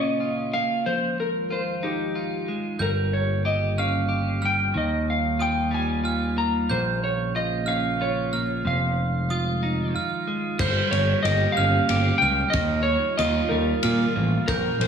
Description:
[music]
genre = post-rock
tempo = 92 BPM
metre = 3/4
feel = straight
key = unclear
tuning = A4 = 440 Hz
[part]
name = electric slide guitar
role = melody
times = 0.0-14.9 s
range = G4 to Bb5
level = -25 LUFS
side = equal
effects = slapback echo
[part]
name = dark analog pad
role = sustained chords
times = 0.0-14.9 s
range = Db3 to G4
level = -33 LUFS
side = right 2 dB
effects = chorus
[part]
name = clean electric guitar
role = arpeggios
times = 0.0-14.9 s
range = Bb2 to G4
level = -29 LUFS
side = left 1 dB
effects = wide subtle chorus, slapback echo
[part]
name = glockenspiel with brass mallets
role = arpeggios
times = 2.8-14.9 s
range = Eb6 to G6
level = -32 LUFS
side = right 6 dB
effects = slapback echo
[part]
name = growling fingered electric bass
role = bass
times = 2.8-14.9 s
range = F1 to Bb2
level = -25 LUFS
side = right 1 dB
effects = overdrive
[part]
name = loose indie drum kit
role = drums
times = 10.6-14.9 s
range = crash cymbal, kick drum, ride cymbal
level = -30 LUFS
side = equal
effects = none
[sound]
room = moderate concert hall reverb, RT60 2.0 s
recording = studio reverb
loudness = -21 LUFS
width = side -7 dB against mid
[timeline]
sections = 0.0-10.6 A section; 10.6-14.9 A section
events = break 10.0-10.6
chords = 0.0 Bbm; 0.8 Fm7; 2.8 Gdim; 4.8 Ebadd9; 6.7 Bbm; 8.7 Fm7; 10.6 Gdim; 12.5 Ebadd9

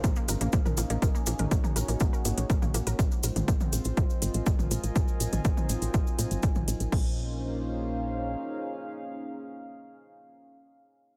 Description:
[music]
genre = melodic techno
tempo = 122 BPM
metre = 4/4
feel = straight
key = Bb minor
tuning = A4 = 439 Hz
[part]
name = warm analog pad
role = sustained chords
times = 0.0-10.3 s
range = Gb3 to Db5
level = -42 LUFS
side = equal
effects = chorus, sidechain pumping
[part]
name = unison pluck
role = arpeggios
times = 0.0-3.0 s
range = Bb3 to Bb4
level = -42 LUFS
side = equal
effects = sidechain pumping, dub echo
[part]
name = tight sequencer bass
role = bass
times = 0.0-8.4 s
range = Ab1 to Bb2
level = -33 LUFS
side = equal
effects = sidechain pumping
[part]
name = electronic kick drum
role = drums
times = 0.0-7.0 s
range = none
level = -29 LUFS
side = equal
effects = overdrive
[part]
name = house drum kit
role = drums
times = 0.0-7.0 s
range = crash cymbal, hi-hat, toms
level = -37 LUFS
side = equal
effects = overdrive
[part]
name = cabasa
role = percussion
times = 0.0-6.9 s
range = none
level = -41 LUFS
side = equal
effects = none
[part]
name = impact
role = sound effects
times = 0.0-1.0 s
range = none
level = barely audible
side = none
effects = none
[part]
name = warbly tape-like pad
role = texture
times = 0.0-10.5 s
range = Db4 to Ab5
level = -41 LUFS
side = equal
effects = chorus, built-in reverb, phaser, sidechain pumping
[sound]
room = light reverb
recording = none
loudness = -28 LUFS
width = mono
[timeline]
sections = 0.0-6.9 A section; 6.9-10.9 B section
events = impact 0.0-1.0; filter sweep on analog synth bass 0.0-6.9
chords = 0.0 Bbmadd9; 1.0 Ebm7/Bb; 3.0 Fm/Bb; 5.0 Cdim/Bb; 6.9 Bbmadd9

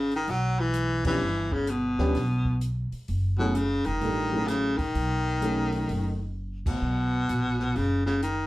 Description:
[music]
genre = jazz, small-group swing and bop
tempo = 128 BPM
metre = 4/4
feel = swing 65% on 8ths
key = unclear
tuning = A4 = 442 Hz
[part]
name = breathy baritone saxophone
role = melody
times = 0.0-8.5 s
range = B2 to F#3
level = -27 LUFS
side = left 1 dB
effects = none
[part]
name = upright bass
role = bass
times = 0.0-8.5 s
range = F1 to D2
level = -29 LUFS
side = equal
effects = none
[part]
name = open jazz drum kit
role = drums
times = 0.1-8.4 s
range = crash cymbal, hi-hat, kick drum, snare drum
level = -35 LUFS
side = equal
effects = none
[part]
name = dark baby grand piano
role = accompaniment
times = 1.1-6.1 s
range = F3 to A4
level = -30 LUFS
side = equal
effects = none
[sound]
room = wet studio reverb, RT60 0.6 s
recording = heard from further back in the room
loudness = -24 LUFS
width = side -17 dB against mid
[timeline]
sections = 0.0-6.8 A section; 6.8-8.5 B section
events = band accent 1.0, 6.6; drum fill 6.4-6.8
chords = 0.0 G#m; 1.2 G; 3.1 F#m9; 5.0 B13; 6.8 B5

